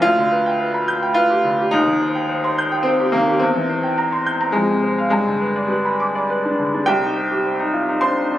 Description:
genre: classical, virtuoso piano study.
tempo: 106 BPM.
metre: 3/4.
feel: rubato.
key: C minor.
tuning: A4 = 436 Hz.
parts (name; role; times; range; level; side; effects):
bright baby grand piano; solo; 0.0-8.4 s; C2 to G6; -16 LUFS; equal; none.
room: moderate recital hall reverb, RT60 1.4 s.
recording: recorded on a phone in the room, club reverb.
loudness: -16 LUFS.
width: side -13 dB against mid.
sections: 0.0-6.9 A section; 6.9-8.4 B section.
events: none.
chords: 0.0 G7/D; 1.7 Cm/Eb; 3.4 C7/E; 4.5 Fm; 5.1 G; 6.9 Cm.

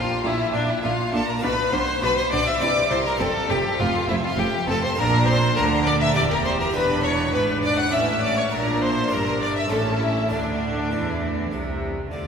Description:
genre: classical, baroque-style concerto movement with solo episodes.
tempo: 101 BPM.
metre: 3/4.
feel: straight.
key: F major, D minor from 5.0 s.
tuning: A4 = 444 Hz.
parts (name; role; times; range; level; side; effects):
clear chamber violin section; melody; 0.0-12.3 s; A4 to F#6; -28 LUFS; left 1 dB; none.
rich violin; melody; 0.0-12.3 s; D4 to F#5; -27 LUFS; left 1 dB; none.
rich chamber violin section; second line; 0.0-12.3 s; D4 to F#5; -26 LUFS; left 2 dB; none.
harpsichord; accompaniment; 0.0-12.3 s; E2 to F4; -34 LUFS; equal; none.
warm chamber viola section; accompaniment; 0.0-12.3 s; A3 to G4; -29 LUFS; right 1 dB; none.
clear chamber cello section; bass; 0.0-12.3 s; E2 to E3; -28 LUFS; right 1 dB; none.
clear chamber double bass section; bass; 0.0-12.3 s; E1 to E2; -28 LUFS; right 2 dB; none.
room: wet church reverb, RT60 3.7 s.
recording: minimal, uncompressed stereo recording.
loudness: -19 LUFS.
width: side -6 dB against mid.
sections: 0.0-12.1 A section.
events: none.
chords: 0.0 Bb; 1.4 Bdim7; 2.6 C; 3.2 F5; 5.0 Bb; 6.2 Edim; 6.7 E7; 7.9 A; 8.5 Bb; 9.1 Em7b5/G; 9.7 A; 10.3 D5.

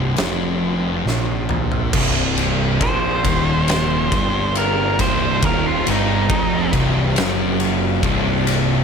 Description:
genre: stoner and doom metal.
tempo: 69 BPM.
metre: 4/4.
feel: straight.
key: C minor.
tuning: A4 = 440 Hz.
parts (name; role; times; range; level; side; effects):
string machine, violins; sustained chords; 0.0-8.8 s; C3 to D5; -33 LUFS; left 1 dB; none.
thick fuzz guitar; riff; 0.0-8.8 s; C2 to Bb2; -24 LUFS; left 9 dB; distortion.
thick fuzz guitar; riff; 0.0-8.8 s; C2 to Bb2; -24 LUFS; right 9 dB; distortion.
fuzz picked electric bass; bass; 0.0-8.8 s; C1 to Bb1; -24 LUFS; equal; overdrive.
oversized low-tuned drum kit; drums; 0.2-8.7 s; crash cymbal, kick drum, ride cymbal, snare drum, toms; -21 LUFS; left 1 dB; none.
overdriven semi-hollow guitar; riff; 1.9-8.8 s; C2 to Bb2; -25 LUFS; left 1 dB; none.
octave-fuzz lead guitar; melody; 2.8-6.7 s; Eb4 to C5; -22 LUFS; right 3 dB; distortion, digital delay.
room: small room ambience.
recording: none.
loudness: -16 LUFS.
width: side -6 dB against mid.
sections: 0.0-1.9 A section; 1.9-8.8 B section.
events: drum fill 1.0-1.9; lead electric guitar solo 1.9-8.8.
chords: 0.0 N.C.; 1.9 Cm.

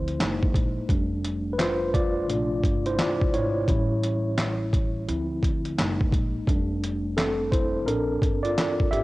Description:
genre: lo-fi hip hop.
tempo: 86 BPM.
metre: 4/4.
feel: swing 64% on 16ths.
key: F major.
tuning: A4 = 438 Hz.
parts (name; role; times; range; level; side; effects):
mellow tine electric piano; accompaniment; 0.0-9.0 s; C3 to E5; -26 LUFS; equal; medium stereo tremolo, cassette tape, low-pass filter.
upright bass; bass; 0.0-9.0 s; F1 to D2; -30 LUFS; equal; none.
dusty soul sampler-style drum kit; drums; 0.1-9.0 s; handclaps, hi-hat, kick drum, snare drum; -25 LUFS; equal; overdrive, cassette tape.
room: little or no reverb.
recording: home recording on cassette.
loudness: -23 LUFS.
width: side -19 dB against mid.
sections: 0.0-9.0 A section.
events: tine electric piano solo 0.0-9.0.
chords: 0.2 Gb69; 0.9 F69; 2.3 Bbmaj9; 3.7 A7; 5.1 Dm9; 5.8 Gb69; 6.5 F69; 7.9 Bbmaj9.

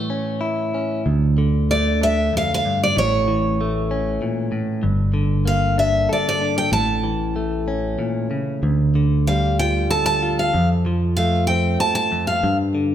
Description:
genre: acoustic folk-pop ballad.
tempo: 95 BPM.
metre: 3/4.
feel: straight.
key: D harmonic minor.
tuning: A4 = 439 Hz.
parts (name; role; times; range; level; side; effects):
picked steel-string acoustic guitar; melody; 0.0-12.6 s; C#5 to A5; -21 LUFS; equal; none.
direct-recorded clean electric guitar; accompaniment; 0.0-12.9 s; D2 to A4; -22 LUFS; left 1 dB; none.
fingered electric bass; bass; 1.1-12.9 s; G1 to G2; -21 LUFS; right 1 dB; none.
room: wet recital hall reverb, RT60 1.6 s.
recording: recorded in a church or concert hall.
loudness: -17 LUFS.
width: side -10 dB against mid.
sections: 0.0-1.1 A section; 1.1-12.9 A section.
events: none.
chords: 0.0 A; 1.1 Dm; 3.0 A; 4.8 Gmadd9; 6.7 A; 8.6 Dm; 10.5 F; 12.4 G5.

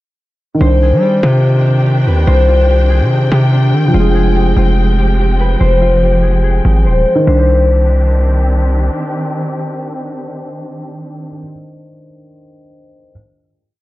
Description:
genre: hip hop, drill.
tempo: 144 BPM.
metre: 4/4.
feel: half-time.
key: C minor.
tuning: A4 = 439 Hz.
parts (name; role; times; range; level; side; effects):
dark concert grand piano; accompaniment; 0.5-13.1 s; Eb3 to C5; -21 LUFS; right 2 dB; none.
concert harp; melody; 0.6-9.3 s; D4 to C5; -17 LUFS; left 2 dB; ping-pong delay.
dark symphonic string section; sustained chords; 0.6-11.4 s; Eb3 to G5; -20 LUFS; equal; none.
hard-hitting 808-style bass; bass; 0.6-8.9 s; Eb1 to G3; -11 LUFS; equal; none.
room: studio reverb.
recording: dark, warm production, low-pass filter.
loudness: -10 LUFS.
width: side -17 dB against mid.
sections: 0.6-7.3 breakdown; 7.3-10.6 final chord.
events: none.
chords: 0.6 Cmadd9; 3.9 Fmadd9; 7.3 Cmadd9.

